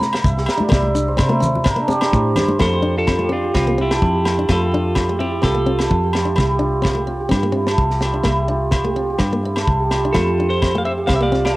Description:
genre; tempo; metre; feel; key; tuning
highlife guitar band; 127 BPM; 4/4; swing 54% on 16ths; unclear; A4 = 444 Hz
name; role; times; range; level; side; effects
picked plugged-in steel-string acoustic guitar; accompaniment; 0.0-11.5 s; A3 to D4; -25 LUFS; left 2 dB; cassette tape
cimbalom; arpeggios; 0.0-11.6 s; D4 to Bb5; -21 LUFS; right 2 dB; cassette tape, analog delay
fingered electric bass; bass; 0.0-11.5 s; C2 to C3; -21 LUFS; equal; none
tight funk drum kit; drums; 0.0-11.6 s; kick drum, snare drum; -20 LUFS; equal; cassette tape
congas; percussion; 0.0-2.6 s; none; -24 LUFS; left 2 dB; none
shekere; percussion; 0.0-2.5 s; none; -28 LUFS; left 1 dB; none
agogo bells; percussion; 0.1-11.6 s; none; -28 LUFS; left 1 dB; none
clean electric guitar; melody; 2.6-6.1, 10.1-11.6 s; C4 to F5; -22 LUFS; left 1 dB; none
room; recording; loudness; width
moderate spring reverb, RT60 1.7 s, small room ambience; home recording on cassette; -15 LUFS; side -18 dB against mid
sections
0.0-2.6 A section; 2.6-11.6 B section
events
hammered dulcimer solo 0.0-2.6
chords
0.0 C5

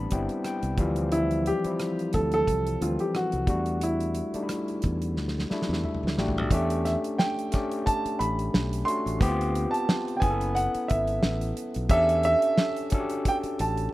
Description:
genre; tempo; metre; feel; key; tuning
R&B, neo-soul; 89 BPM; 4/4; swing 55% on 16ths; E phrygian, E dorian from 6.5 s; A4 = 440 Hz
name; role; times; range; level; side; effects
overdriven tine electric piano; accompaniment; 0.0-13.9 s; E3 to B5; -30 LUFS; left 1 dB; none
modern bright fingered electric bass; bass; 0.0-13.9 s; F#1 to E2; -29 LUFS; equal; none
damped 70s drum kit; drums; 0.1-13.9 s; hi-hat, kick drum, rim click, snare drum, toms; -28 LUFS; equal; none
warm baby grand piano; melody; 1.1-13.9 s; E4 to C6; -27 LUFS; right 1 dB; none
room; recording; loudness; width
small room ambience; rough home demo mix, vinyl crackle, faint mains hum; -24 LUFS; side -17 dB against mid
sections
0.0-6.5 A section; 6.5-13.9 B section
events
tine electric piano fill 0.0-1.1, 5.5-6.5; drum fill 5.2-6.5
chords
0.0 Am9; 0.8 Dm9; 3.5 Em9; 6.5 Em11; 9.2 Dm7; 10.2 F#m11; 11.9 Em11

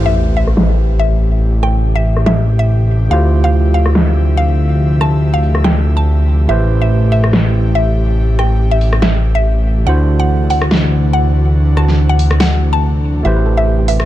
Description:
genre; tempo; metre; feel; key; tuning
future bass; 142 BPM; 4/4; swing 55% on 16ths, half-time; A minor; A4 = 439 Hz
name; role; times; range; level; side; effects
overdriven tine electric piano; accompaniment; 0.0-14.1 s; D3 to C5; -21 LUFS; right 4 dB; auto-pan
airy breathy pad; sustained chords; 0.0-14.1 s; C3 to E5; -25 LUFS; left 1 dB; chorus
fat analog bass; bass; 0.0-14.1 s; A1 to D2; -12 LUFS; equal; none
sub drop; sound effects; 0.0-1.4 s; none; -21 LUFS; equal; none
mallet-like synth pluck; melody; 0.1-14.1 s; E5 to A5; -20 LUFS; left 1 dB; chorus, phaser, tape echo
dubstep drum kit; drums; 0.4-14.1 s; hi-hat, rim click, snare drum; -17 LUFS; equal; overdrive, low-pass filter on hats, low-pass filter on snare, low-pass filter on cymbals, low-pass filter on room
soft round pluck; arpeggios; 13.2-14.1 s; G4 to E5; -30 LUFS; right 1 dB; none
room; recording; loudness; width
little or no reverb; none; -10 LUFS; side -14 dB against mid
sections
0.0-14.1 A section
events
impact 0.0-1.4; filter sweep on drum 0.0-14.1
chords
0.0 Am9; 3.1 Dm11; 6.5 Am9; 9.9 D9; 13.2 Am9

